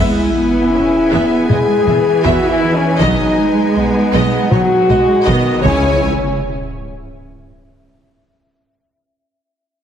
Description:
cinematic, epic orchestral film score; 79 BPM; 4/4; straight; A4 = 440 Hz
warm symphonic violin section; melody; 0.0-6.1 s; G#5; -28 LUFS; left 3 dB
warm symphonic violin section; second line; 0.0-6.1 s; C#5 to E5; -23 LUFS; left 3 dB
rich symphonic viola section; accompaniment; 0.0-6.1 s; B3 to E4; -25 LUFS; right 1 dB
mellow French horn section; sustained chords; 0.0-6.0 s; B3 to G#4; -15 LUFS; left 2 dB
mellow woodwind section; sustained chords; 0.0-6.0 s; G#3 to C#5; -25 LUFS; left 1 dB
clear symphonic double bass section; bass; 0.0-6.1 s; B1 to E2; -21 LUFS; right 3 dB
dark symphonic cello section; bass; 0.0-6.1 s; C#2 to C#4; -18 LUFS; right 2 dB
sub drop; sound effects; 0.0-8.7 s; -25 LUFS; equal
taiko ensemble; drums; 1.5-7.1 s; -20 LUFS; equal
timpani; percussion; 5.7-6.0 s; C#3; -24 LUFS; left 1 dB
wet scoring stage reverb, RT60 1.9 s; heavily compressed radio sound; -11 LUFS; side -9 dB against mid
0.0-6.0 A section; 6.0-9.1 B section
impact 0.0-3.0, 6.0-9.1
0.0 E; 3.0 B6; 5.7 C#m; 6.0 N.C.
0.74 1.50 2.25 | 3.01 3.77 4.52 5.28 | 6.03 6.79 7.54 8.30

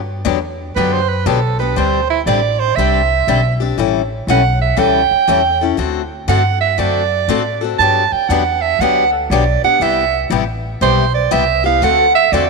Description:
acoustic string swing (jazz manouche); 119 BPM; 4/4; swing 66% on 8ths; G major; A4 = 440 Hz
upright bass; bass; 0.0-12.5 s; A1 to A2; -19 LUFS; equal
picked steel-string acoustic guitar; accompaniment; 0.2-12.4 s; C3 to A4; -18 LUFS; left 12 dB
clear soprano saxophone; second line; 0.8-12.5 s; E4 to A5; -15 LUFS; right 8 dB
moderate plate reverb, RT60 3.2 s; 1960s-style stereo with parts hard left and right; -12 LUFS; side -3 dB against mid
0.0-12.5 A section
soprano saxophone solo 0.0-12.5
0.0 Gmaj7; 1.8 D9sus4; 3.8 A7; 5.8 D7; 7.8 Gmaj7; 9.8 Cmaj7; 11.8 D7
0.27 0.77 1.27 | 1.77 2.27 2.77 3.27 | 3.78 4.28 4.78 5.28 | 5.79 6.29 6.79 7.29 | 7.80 8.30 8.80 9.30 | 9.80 10.31 10.81 11.31 | 11.81 12.32

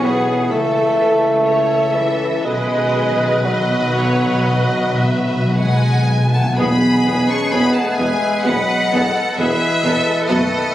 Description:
classical, slow romantic movement for symphony orchestra; 53-68 BPM; 4/4; rubato; E major; A4 = 440 Hz
clear studio violin section; melody; 0.0-10.7 s; D#5 to C#6; -24 LUFS; left 3 dB
mellow small flute group; second line; 0.0-10.7 s; E4 to A5; -28 LUFS; left 1 dB
warm studio violin section; second line; 0.0-10.4 s; G#4 to G#5; -27 LUFS; left 2 dB
mellow bassoon; accompaniment; 0.0-10.7 s; E3 to B3; -20 LUFS; right 1 dB
rich studio viola section; accompaniment; 0.0-10.4 s; B3 to B4; -24 LUFS; equal
dark French horn section; sustained chords; 0.0-10.7 s; D#3 to B4; -23 LUFS; left 2 dB
dark trombone section; sustained chords; 0.0-10.6 s; B2 to C#4; -28 LUFS; right 1 dB
clear tuba; bass; 0.0-10.5 s; E1 to C#2; -26 LUFS; right 1 dB
rich studio cello section; bass; 0.0-10.7 s; E3 to B4; -26 LUFS; right 1 dB
warm studio double bass section; bass; 0.0-10.4 s; B1 to F#2; -26 LUFS; right 1 dB
timpani; percussion; 2.5-7.9 s; E2 to B2; -20 LUFS; equal
warm cor anglais; second line; 6.6-10.7 s; B4; -27 LUFS; right 2 dB
moderate concert hall reverb, RT60 1.8 s; recorded on a phone in the room, club reverb, compression; -14 LUFS; side -13 dB against mid
0.0-6.6 A section; 6.6-10.7 B section
timpani fill 2.4-6.6
0.5 A/C#; 2.4 B; 6.6 E
0.50 1.45 | 2.45 3.46 4.46 5.56 | 6.58 7.51 8.44 9.37 | 10.28

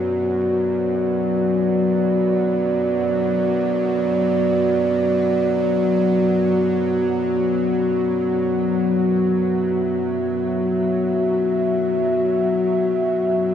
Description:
dark ambient drone; free time; A4 = 440 Hz
dark analog pad; sustained chords; 0.0-13.5 s; F#3 to E5; -18 LUFS; equal; chorus, shimmer reverb
bowed-like drone; drone; 0.0-13.5 s; F#2 to F#3; -24 LUFS; left 3 dB; built-in reverb
wet cathedral reverb, RT60 6.2 s; -17 LUFS; side -9 dB against mid
0.0-13.5 A section
0.0 Bm/F#
free time

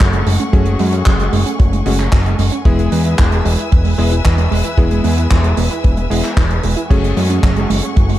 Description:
italo disco; 113 BPM; 4/4; straight; F# minor; A4 = 440 Hz
warm studio string section; sustained chords; 0.0-8.2 s; A3 to E6; -25 LUFS; left 2 dB
wide unison pluck; arpeggios; 0.0-8.2 s; E3 to E4; -21 LUFS; right 5 dB; digital delay
fat analog bass; bass; 0.0-8.2 s; E1 to F#2; -16 LUFS; equal; tube saturation
damped 70s drum kit; drums; 0.0-8.2 s; crash cymbal, handclaps, hi-hat; -23 LUFS; equal; small room ambience
kick drum; drums; 0.0-8.1 s; -12 LUFS; equal; small room ambience
bright electric grand piano; stabs; 0.5-8.2 s; G#3 to G#4; -22 LUFS; left 3 dB; digital delay
studio ambience; dark, warm production; -12 LUFS; side -14 dB against mid
0.0-8.2 A section
0.0 F#madd9; 2.7 E; 6.9 F#madd9
0.00 | 0.53 1.06 1.59 2.12 | 2.65 3.19 3.72 4.25 | 4.78 5.31 5.84 6.37 | 6.90 7.43 7.96

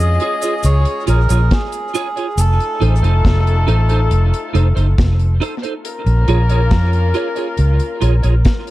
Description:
dub reggae; 69 BPM; 4/4; straight; Bb minor; A4 = 440 Hz
melodica; melody; 0.0-2.8 s; Ab4 to Eb5; -22 LUFS; right 2 dB; tape echo
warm horn section; second line; 0.0-8.7 s; Ab3 to Bb4; -23 LUFS; left 3 dB; tape echo
vintage muted fingered electric bass; bass; 0.0-8.4 s; F1 to F2; -13 LUFS; equal
cabasa; percussion; 0.0-2.6 s; -31 LUFS; right 2 dB; tape echo
clean electric guitar; accompaniment; 0.2-8.3 s; Eb4 to Db5; -24 LUFS; right 6 dB; ensemble chorus, tape echo
deep reggae drum kit; drums; 0.2-8.7 s; hi-hat, kick drum, snare drum; -18 LUFS; equal
studio reverb; echo-heavy mix; -13 LUFS; side -16 dB against mid
0.0-8.7 A section
part muted 2.4-8.7
0.0 Bbm7; 2.4 F7; 5.8 Bbm7
0.64 1.51 | 2.38 3.24 4.11 4.98 | 5.85 6.72 7.58 8.45

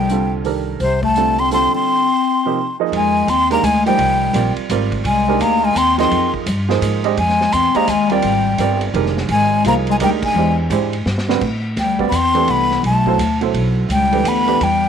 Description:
modal jazz; 170 BPM; 3/4; swing 63% on 8ths; F dorian, A dorian from 11.4 s; A4 = 439 Hz
breathy mellow silver concert flute; melody; 0.0-14.9 s; C5 to C6; -17 LUFS; right 1 dB
warm bass clarinet; second line; 0.0-14.9 s; C3 to C4; -20 LUFS; left 13 dB
warm baby grand piano; accompaniment; 0.0-14.6 s; B2 to Eb5; -21 LUFS; right 13 dB
upright bass; bass; 0.0-14.9 s; F1 to A2; -20 LUFS; equal
vintage drum kit; drums; 0.1-14.7 s; crash cymbal, hi-hat, kick drum, ride cymbal, snare drum; -28 LUFS; equal
light reverb; 1960s-style stereo with parts hard left and right; -14 LUFS; side -7 dB against mid
0.0-2.9 A section; 2.9-11.4 B section; 11.4-14.9 C section
band accent 10.2; drum fill 11.1-11.4
0.0 Cm69; 0.8 F/C; 2.9 Fm9; 10.4 E7alt; 11.4 Am11; 13.5 Em7
0.09 0.45 | 0.80 1.16 1.51 | 1.87 2.22 2.57 | 2.93 3.28 3.64 | 3.99 4.34 4.70 | 5.05 5.41 5.76 | 6.11 6.47 6.82 | 7.17 7.53 7.88 | 8.23 8.59 8.94 | 9.29 9.65 10.00 | 10.35 10.71 11.06 | 11.41 11.77 12.12 | 12.48 12.83 13.19 | 13.54 13.90 14.25 | 14.61

